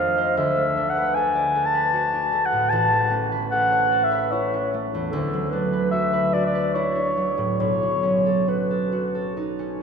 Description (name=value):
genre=classical, impressionist duo for clarinet and harp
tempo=75 BPM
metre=3/4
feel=uneven beats, rubato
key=unclear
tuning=A4 = 442 Hz
part: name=dark clarinet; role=melody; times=0.0-9.4 s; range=A4 to A5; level=-21 LUFS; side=left 1 dB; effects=none
part: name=concert harp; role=accompaniment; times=0.0-9.8 s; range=A1 to D5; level=-25 LUFS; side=right 2 dB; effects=none
room=wet church reverb, RT60 3.4 s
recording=none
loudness=-20 LUFS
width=side -6 dB against mid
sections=0.0-9.8 A section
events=none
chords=0.4 D6; 2.7 Aadd9; 5.1 D69; 7.6 B9